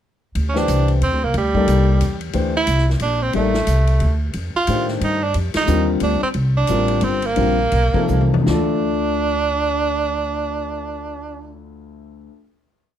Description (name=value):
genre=modal jazz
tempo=153-181 BPM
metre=3/4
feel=swing 61% on 8ths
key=D phrygian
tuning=A4 = 440 Hz
part: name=upright bass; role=bass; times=0.4-12.3 s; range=G1 to A2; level=-20 LUFS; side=equal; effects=none
part: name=swinging big-band drum kit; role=drums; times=0.4-8.6 s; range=hi-hat, kick drum, ride cymbal, snare drum, toms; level=-28 LUFS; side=left 2 dB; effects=none
part: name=edgy tenor saxophone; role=melody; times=0.5-11.6 s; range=G3 to F4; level=-21 LUFS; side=right 3 dB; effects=none
part: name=warm concert grand piano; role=accompaniment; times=0.5-12.3 s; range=D2 to D5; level=-23 LUFS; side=left 5 dB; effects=none
room=light reverb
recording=dark, warm production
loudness=-16 LUFS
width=side -10 dB against mid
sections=0.4-8.5 A section; 8.5-10.8 final chord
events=band accent 5.5; slowing down 6.3-8.5; drum fill 8.1-8.5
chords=0.4 D9sus4; 4.3 F9sus4; 8.5 Dm